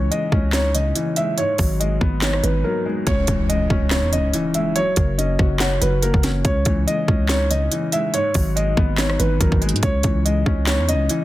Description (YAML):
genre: hip hop, trap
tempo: 142 BPM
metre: 4/4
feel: half-time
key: C# dorian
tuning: A4 = 440 Hz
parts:
  - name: dark concert grand piano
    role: melody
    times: 0.0-11.2 s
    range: A#4 to E5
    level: -24 LUFS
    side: right 1 dB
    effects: tape echo
  - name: felt-muted upright piano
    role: accompaniment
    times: 0.0-11.2 s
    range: G#2 to F#5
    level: -24 LUFS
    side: left 2 dB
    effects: none
  - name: growling 808-style bass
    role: bass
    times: 0.0-11.1 s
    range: F#1 to G#2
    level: -20 LUFS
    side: equal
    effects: none
  - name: trap drum kit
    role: drums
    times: 0.1-11.2 s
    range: handclaps, hi-hat, kick drum, rim click, snare drum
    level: -21 LUFS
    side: equal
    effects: none
  - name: impact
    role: sound effects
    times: 3.1-4.8 s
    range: none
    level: -30 LUFS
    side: equal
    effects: none
room: little or no reverb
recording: dense, heavily limited modern master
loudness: -17 LUFS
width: side -15 dB against mid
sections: 0.0-3.1 A section; 3.1-11.2 B section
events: break 2.6-3.1; impact 3.1-4.8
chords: 0.0 C#madd9; 1.4 G#m7; 3.1 C#madd9; 4.8 F#; 6.4 C#madd9; 8.1 G#m7; 9.8 C#madd9